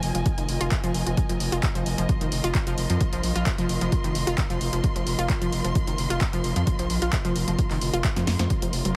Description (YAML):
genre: driving peak-time techno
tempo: 131 BPM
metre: 4/4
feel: straight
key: F minor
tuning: A4 = 442 Hz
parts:
  - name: gritty driven synth bass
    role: bass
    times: 0.0-8.9 s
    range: F1 to F2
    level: -30 LUFS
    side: equal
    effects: sidechain pumping
  - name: punchy analog drum machine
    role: drums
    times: 0.0-8.9 s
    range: handclaps, hi-hat, snare drum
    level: -33 LUFS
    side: equal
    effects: sidechain pumping on hats
  - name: dark studio string section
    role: texture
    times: 0.0-9.0 s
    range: F4 to C6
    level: -36 LUFS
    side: equal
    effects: sidechain pumping
  - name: analog pluck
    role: riff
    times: 0.1-9.0 s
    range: Eb3 to F4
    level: -31 LUFS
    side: equal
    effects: chorus, tube saturation, sidechain pumping, digital delay
  - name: electronic kick drum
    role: drums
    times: 0.3-8.6 s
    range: none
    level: -28 LUFS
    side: equal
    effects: none
room: light reverb, digital ambience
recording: heavily compressed radio sound, multiband compression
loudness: -25 LUFS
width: mono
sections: 0.0-9.0 A section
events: drum fill 8.2-8.5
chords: 0.0 Fm